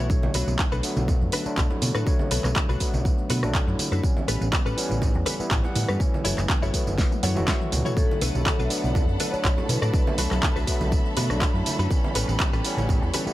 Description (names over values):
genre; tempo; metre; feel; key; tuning
nu-disco, nu disco; 122 BPM; 4/4; straight; B minor; A4 = 440 Hz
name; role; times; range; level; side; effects
overdriven tine electric piano; accompaniment; 0.0-13.3 s; D3 to F#5; -30 LUFS; equal; sidechain pumping, tape echo
direct-recorded clean electric guitar; riff; 0.0-13.3 s; C#4 to F#5; -32 LUFS; left 2 dB; analog chorus
hollow-body short-scale fingered electric bass; bass; 0.0-13.3 s; E1 to B2; -26 LUFS; equal; sidechain pumping
electronic kick drum; drums; 0.1-13.0 s; none; -24 LUFS; equal; small room reverb
pop drum kit; drums; 0.1-13.3 s; handclaps, hi-hat, rim click, snare drum, tambourine, toms; -28 LUFS; right 1 dB; small room reverb
maracas and congas; percussion; 0.1-13.3 s; none; -34 LUFS; right 3 dB; none
vibraphone with soft mallets; melody; 8.0-10.1 s; A4 to E5; -32 LUFS; left 2 dB; tape echo
warm symphonic violin section; sustained chords; 8.0-13.3 s; G4 to B5; -34 LUFS; left 1 dB; sidechain pumping
room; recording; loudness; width
little or no reverb; none; -21 LUFS; side -15 dB against mid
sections
0.0-13.3 A section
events
drum fill 7.0-8.0; clean electric guitar fill 7.0-8.0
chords
0.1 Bm7; 4.0 A9; 6.0 F#m7; 8.0 Bm7; 11.9 A9